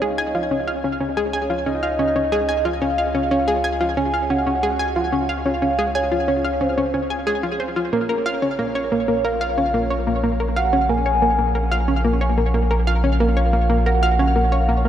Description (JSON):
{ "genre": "ambient, sequencer-driven space music", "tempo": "91 BPM", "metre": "4/4", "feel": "straight", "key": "Db major", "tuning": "A4 = 440 Hz", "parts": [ { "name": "soft octave-layered synth lead", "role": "melody", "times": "0.0-14.9 s", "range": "C5 to Ab5", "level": "-23 LUFS", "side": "right 1 dB", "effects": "chorus, phaser, tape echo" }, { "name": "analog pluck", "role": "riff", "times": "0.0-14.9 s", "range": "Bb3 to Ab5", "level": "-21 LUFS", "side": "equal", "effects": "chorus, tape echo" }, { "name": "round analog bass", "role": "bass", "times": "0.0-14.9 s", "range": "Bb1 to Db2", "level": "-24 LUFS", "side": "equal", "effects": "none" } ], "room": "wet huge ambient reverb, RT60 7.9 s", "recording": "in a vast, echoing space", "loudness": "-18 LUFS", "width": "side -10 dB against mid", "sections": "0.0-14.9 A section", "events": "fade-in on analog synth bass 0.0-14.9", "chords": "0.0 Dbmaj7; 7.9 Bbm7", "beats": "| 0.02 0.68 1.34 2.00 | 2.65 3.31 3.97 4.63 | 5.29 5.95 6.61 7.27 | 7.93 8.59 9.25 9.91 | 10.57 11.23 11.88 12.54 | 13.20 13.86 14.52" }